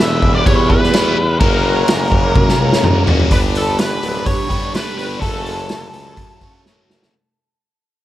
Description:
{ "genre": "psychedelic rock", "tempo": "126 BPM", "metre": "4/4", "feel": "straight", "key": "unclear", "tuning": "A4 = 440 Hz", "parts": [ { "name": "octave-fuzz lead guitar", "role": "melody", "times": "0.0-6.6 s", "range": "A4 to E5", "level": "-21 LUFS", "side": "left 1 dB", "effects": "wah, distortion, analog delay" }, { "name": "bright tonewheel organ", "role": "sustained chords", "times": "0.0-7.1 s", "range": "D4 to B5", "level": "-33 LUFS", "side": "right 4 dB", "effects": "none" }, { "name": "overdriven electric guitar", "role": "riff", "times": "0.0-7.1 s", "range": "E2 to G4", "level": "-20 LUFS", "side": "equal", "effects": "phaser" }, { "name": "warm tuba", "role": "bass", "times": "0.0-7.1 s", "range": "D1 to F#2", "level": "-20 LUFS", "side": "equal", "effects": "none" }, { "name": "vintage drum kit", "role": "drums", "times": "0.0-7.1 s", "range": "crash cymbal, hi-hat, kick drum, snare drum, toms", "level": "-16 LUFS", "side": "equal", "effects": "none" } ], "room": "little or no reverb", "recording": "none", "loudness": "-12 LUFS", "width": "side -14 dB against mid", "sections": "0.0-3.3 A section; 3.3-7.1 B section", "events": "drum fill 2.3-3.3, 6.6-7.1; fade-out 3.3-7.1", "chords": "0.0 Em; 1.4 F#; 3.3 G; 5.2 F#m" }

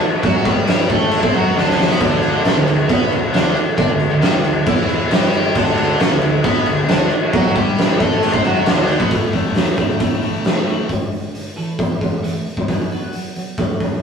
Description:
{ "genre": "quiet-loud alternative rock", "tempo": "135 BPM", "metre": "4/4", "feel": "straight", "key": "D major", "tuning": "A4 = 441 Hz", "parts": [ { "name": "oversized low-tuned drum kit", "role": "drums", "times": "0.0-13.9 s", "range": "crash cymbal, hi-hat, kick drum, snare drum", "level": "-16 LUFS", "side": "equal", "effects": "none" }, { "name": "distorted electric guitar", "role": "riff", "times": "0.2-10.9 s", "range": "A2 to D5", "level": "-24 LUFS", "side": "left 3 dB", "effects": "overdrive" }, { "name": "tight distorted guitar", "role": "riff", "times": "0.2-9.1 s", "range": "D3 to D5", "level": "-20 LUFS", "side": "right 2 dB", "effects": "distortion" }, { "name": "fuzz fingered electric bass", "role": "bass", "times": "0.2-10.7 s", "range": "D2 to D3", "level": "-25 LUFS", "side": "equal", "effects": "overdrive" }, { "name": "twelve-string electric guitar", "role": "arpeggios", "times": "9.1-14.0 s", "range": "G2 to E4", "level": "-25 LUFS", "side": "right 2 dB", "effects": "phaser" } ], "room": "light reverb", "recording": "rough rehearsal-room recording, warm saturation, studio reverb", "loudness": "-14 LUFS", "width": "side -6 dB against mid", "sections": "0.0-9.1 A section; 9.1-10.9 B section; 10.9-14.0 C section", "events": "drum fill 1.6-2.0", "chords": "0.0 D; 9.1 A; 10.9 G5; 11.6 A5; 12.7 B5" }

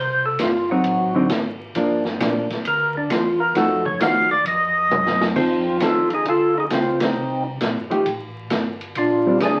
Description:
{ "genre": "soul jazz organ trio", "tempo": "133 BPM", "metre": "4/4", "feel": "swing 66% on 8ths", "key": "F mixolydian from 5.3 s", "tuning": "A4 = 440 Hz", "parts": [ { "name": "percussive tonewheel organ", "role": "melody", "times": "0.0-9.6 s", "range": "C4 to F5", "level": "-21 LUFS", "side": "equal", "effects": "slow rotary speaker, overdrive" }, { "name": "mellow tonewheel organ", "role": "bass", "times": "0.0-9.6 s", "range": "G1 to Gb2", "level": "-36 LUFS", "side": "equal", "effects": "chorus vibrato, slow rotary speaker" }, { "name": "swinging big-band drum kit", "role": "drums", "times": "0.4-9.5 s", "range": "crash cymbal, hi-hat, kick drum, ride cymbal, snare drum, toms", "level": "-28 LUFS", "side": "equal", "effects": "none" }, { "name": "hollow-body jazz guitar", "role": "accompaniment", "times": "0.7-9.4 s", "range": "D3 to A4", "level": "-23 LUFS", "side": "equal", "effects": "none" } ], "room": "wet club reverb, RT60 0.5 s", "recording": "very old 78 rpm record, vinyl crackle, nothing above 11.0 kHz", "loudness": "-20 LUFS", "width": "mono", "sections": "0.0-5.3 A section; 5.3-9.6 B section", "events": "tonewheel organ solo 0.0-5.3; drum fill 4.9-5.3; band accent 6.9", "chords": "0.0 F9; 0.8 D7b9; 1.7 Gm7; 3.5 F7b9; 5.3 F7; 7.2 Cm7; 8.1 Gsus2; 9.0 Bb69" }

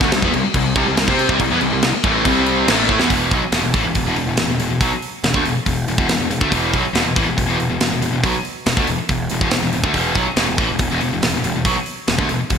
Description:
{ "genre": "hard rock", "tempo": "140 BPM", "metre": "4/4", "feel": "straight", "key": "E minor", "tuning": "A4 = 440 Hz", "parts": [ { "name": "overdriven semi-hollow guitar", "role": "riff", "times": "0.0-12.6 s", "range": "E2 to C5", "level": "-23 LUFS", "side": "right 8 dB", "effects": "lush chorus" }, { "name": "raw garage guitar", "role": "riff", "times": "0.0-3.1 s", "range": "A2 to C5", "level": "-22 LUFS", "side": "equal", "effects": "overdrive, ensemble chorus" }, { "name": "scooped high-gain guitar", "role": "riff", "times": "0.0-12.6 s", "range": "E2 to C5", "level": "-21 LUFS", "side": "left 8 dB", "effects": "distortion" }, { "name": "fuzz picked electric bass", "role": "bass", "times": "0.0-12.6 s", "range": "E1 to C3", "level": "-23 LUFS", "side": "equal", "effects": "overdrive" }, { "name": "tight metal drum kit", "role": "drums", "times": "0.0-12.6 s", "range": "crash cymbal, hi-hat, kick drum, snare drum", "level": "-20 LUFS", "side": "equal", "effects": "gated reverb" } ], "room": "moderate lush hall reverb, RT60 1.7 s, small room reverb", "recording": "bright 1980s-style digital production", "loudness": "-15 LUFS", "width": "side -7 dB against mid", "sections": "0.0-3.1 A section; 3.1-12.6 B section", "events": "drum fill 2.9", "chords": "0.0 C5; 3.1 E5" }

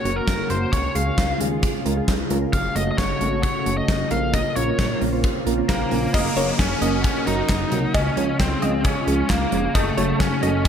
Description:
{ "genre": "synth-pop", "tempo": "133 BPM", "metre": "4/4", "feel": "straight", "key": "unclear", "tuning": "A4 = 439 Hz", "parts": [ { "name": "biting lead guitar", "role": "melody", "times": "0.0-10.7 s", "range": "A3 to F5", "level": "-26 LUFS", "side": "equal", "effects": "overdrive, ping-pong delay" }, { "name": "soft string machine", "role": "sustained chords", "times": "0.0-10.7 s", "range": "Db3 to Gb4", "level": "-27 LUFS", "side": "left 1 dB", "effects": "ensemble chorus" }, { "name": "soft electric-piano-like synth keys", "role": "accompaniment", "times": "0.1-10.6 s", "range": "F3 to Ab5", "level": "-27 LUFS", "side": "right 3 dB", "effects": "chorus" }, { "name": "chorused synth bass", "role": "bass", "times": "0.1-10.7 s", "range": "F1 to Eb2", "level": "-27 LUFS", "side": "equal", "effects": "none" }, { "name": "gated 80s drum kit", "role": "drums", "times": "0.1-10.7 s", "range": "handclaps, hi-hat, kick drum, snare drum", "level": "-23 LUFS", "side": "equal", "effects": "none" }, { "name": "swell and downlifter", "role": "sound effects", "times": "5.1-9.8 s", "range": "none", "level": "-34 LUFS", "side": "right 1 dB", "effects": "none" }, { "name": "wide unison pluck", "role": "second line", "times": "6.1-10.7 s", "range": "Db5 to Eb5", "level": "-28 LUFS", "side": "left 2 dB", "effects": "ping-pong delay" } ], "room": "moderate plate reverb, RT60 2.0 s", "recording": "dreamy mix soaked in reverb", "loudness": "-19 LUFS", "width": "side -8 dB against mid", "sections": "0.0-6.1 A section; 6.1-10.7 B section", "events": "synth keys fill 5.5-6.1", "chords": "0.0 Gb; 0.7 Db; 2.5 Gbm; 4.1 Bbm; 6.1 Gb; 7.9 Db; 9.8 Gbm" }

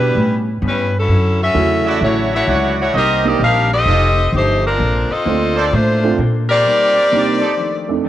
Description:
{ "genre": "jazz, big band swing", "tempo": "129 BPM", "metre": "4/4", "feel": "swing 65% on 8ths", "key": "unclear", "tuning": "A4 = 441 Hz", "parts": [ { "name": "edgy saxophone section", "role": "melody", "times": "0.0-8.0 s", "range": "F3 to F5", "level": "-16 LUFS", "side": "left 1 dB", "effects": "cassette tape" }, { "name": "warm concert grand piano", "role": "accompaniment", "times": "0.0-8.1 s", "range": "F2 to A4", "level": "-20 LUFS", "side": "right 6 dB", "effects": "cassette tape" }, { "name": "upright bass", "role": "bass", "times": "0.0-6.6 s", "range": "F1 to B2", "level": "-17 LUFS", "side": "equal", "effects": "none" }, { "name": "vintage hollow-body jazz guitar", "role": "accompaniment", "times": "0.2-8.1 s", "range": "F2 to C5", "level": "-26 LUFS", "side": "left 6 dB", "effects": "cassette tape" }, { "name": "bright trumpet section", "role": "stabs", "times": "1.8-7.5 s", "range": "D4 to F#5", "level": "-22 LUFS", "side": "right 6 dB", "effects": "cassette tape" } ], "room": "light reverb, studio ambience", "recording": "home recording on cassette", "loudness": "-13 LUFS", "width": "side -12 dB against mid", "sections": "0.0-8.1 A section", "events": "none", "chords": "0.2 A9; 1.1 Dmaj9; 2.9 Cm7; 3.9 F9; 4.8 Bbmaj9; 6.7 Cm7; 7.6 F13" }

